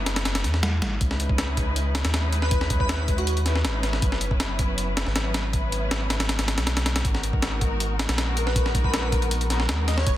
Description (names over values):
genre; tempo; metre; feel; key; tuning
drum and bass, jungle; 159 BPM; 4/4; straight; G# minor; A4 = 441 Hz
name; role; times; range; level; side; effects
muted studio string section; sustained chords; 0.0-10.2 s; F#3 to B4; -31 LUFS; left 1 dB; vintage 12-bit sampler grit
soft dub sub bass; bass; 0.0-10.2 s; E1 to E2; -26 LUFS; equal; none
breakbeat sampler-style drum kit; drums; 0.1-10.2 s; hi-hat, kick drum, snare drum; -25 LUFS; equal; none
airy dreamy lead; melody; 2.4-3.3, 8.5-10.1 s; F#4 to D#5; -31 LUFS; equal; chorus, dub echo
room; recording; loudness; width
light reverb, digital ambience; dense, heavily limited modern master; -22 LUFS; side -13 dB against mid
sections
0.0-10.2 A section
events
none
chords
0.0 Emaj7; 1.0 C#m9; 4.0 F#7sus4; 7.0 G#m9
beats
0.25 0.63 | 1.01 1.39 1.76 2.14 | 2.52 2.90 3.27 3.65 | 4.03 4.41 4.78 5.16 | 5.54 5.91 6.29 6.67 | 7.05 7.42 7.80 8.18 | 8.56 8.93 9.31 9.69 | 10.06